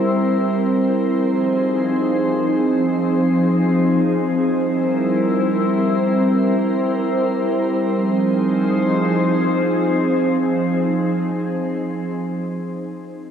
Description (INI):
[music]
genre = hip hop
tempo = free time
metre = none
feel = none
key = F minor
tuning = A4 = 440 Hz
[part]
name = glassy FM pad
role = solo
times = 0.0-11.8 s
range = F3 to C5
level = -16 LUFS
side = equal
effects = ensemble chorus, built-in reverb, analog delay
[sound]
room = light reverb, digital ambience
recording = echo-heavy mix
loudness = -16 LUFS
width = side -8 dB against mid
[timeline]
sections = 0.0-7.9 A section; 7.9-11.3 B section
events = none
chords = 0.0 C7; 1.1 Fm7; 4.5 C7; 7.9 Fm7